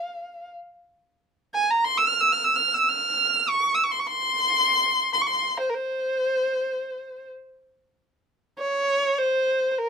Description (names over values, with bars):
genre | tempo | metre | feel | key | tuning
arabic | 100 BPM | 4/4 | straight | C maqam hijaz | A4 = 440 Hz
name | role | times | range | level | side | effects
dark violin | solo | 0.0-9.9 s | Bb4 to F6 | -21 LUFS | right 1 dB | none
room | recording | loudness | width
light reverb | minimal, uncompressed stereo recording | -21 LUFS | side -6 dB against mid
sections
0.0-8.6 A section; 8.6-9.9 B section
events
none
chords
none